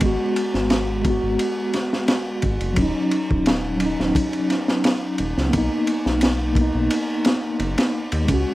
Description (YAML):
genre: trip hop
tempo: 87 BPM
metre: 4/4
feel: straight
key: unclear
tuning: A4 = 440 Hz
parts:
  - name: mellow tine electric piano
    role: accompaniment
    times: 0.0-8.5 s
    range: Gb3 to Gb4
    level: -22 LUFS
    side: equal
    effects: medium stereo tremolo, harmonic tremolo, vintage 12-bit sampler grit, low-pass filter, tape echo, plate reverb
  - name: round analog bass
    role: bass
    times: 0.0-8.4 s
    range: Eb1 to D#2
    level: -25 LUFS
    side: equal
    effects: none
  - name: crunchy breakbeat drum kit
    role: drums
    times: 0.0-8.5 s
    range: kick drum, ride cymbal, snare drum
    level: -23 LUFS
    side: equal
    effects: none
room: light reverb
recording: rough home demo mix, vinyl crackle, faint mains hum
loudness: -19 LUFS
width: side -17 dB against mid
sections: 0.0-8.5 A section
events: filter sweep on tine electric piano 0.0-8.5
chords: 0.0 Abm7; 2.8 Ebm7; 5.5 Bmaj7